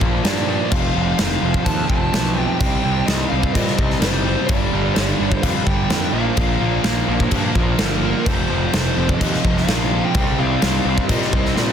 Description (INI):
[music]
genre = hard rock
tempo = 127 BPM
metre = 4/4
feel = straight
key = C dorian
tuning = A4 = 439 Hz
[part]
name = tonewheel organ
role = sustained chords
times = 0.0-11.7 s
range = F3 to G5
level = -35 LUFS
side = left 1 dB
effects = none
[part]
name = overdriven electric guitar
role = riff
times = 0.0-11.7 s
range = F2 to C4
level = -26 LUFS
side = left 14 dB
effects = none
[part]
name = sludgy distorted guitar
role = riff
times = 0.0-11.7 s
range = F2 to C4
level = -24 LUFS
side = right 10 dB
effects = overdrive
[part]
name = fuzz picked electric bass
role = bass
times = 0.0-11.7 s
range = F1 to Bb2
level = -23 LUFS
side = equal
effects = overdrive
[part]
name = big rock drum kit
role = drums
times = 0.0-11.7 s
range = crash cymbal, kick drum, snare drum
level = -20 LUFS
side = left 1 dB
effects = none
[part]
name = dark smooth lead guitar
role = melody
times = 0.3-11.5 s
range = Bb4 to A5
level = -26 LUFS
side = left 1 dB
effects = overdrive
[part]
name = distorted electric guitar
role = riff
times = 4.5-11.7 s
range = F2 to C4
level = -27 LUFS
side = equal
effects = distortion
[sound]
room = little or no reverb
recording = dense, heavily limited modern master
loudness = -16 LUFS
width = side -8 dB against mid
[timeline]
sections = 0.0-11.7 A section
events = drum fill 11.6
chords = 0.0 Bb; 0.7 F; 2.6 Cm; 4.5 G5; 6.1 Bb5; 8.3 F5; 10.2 Cm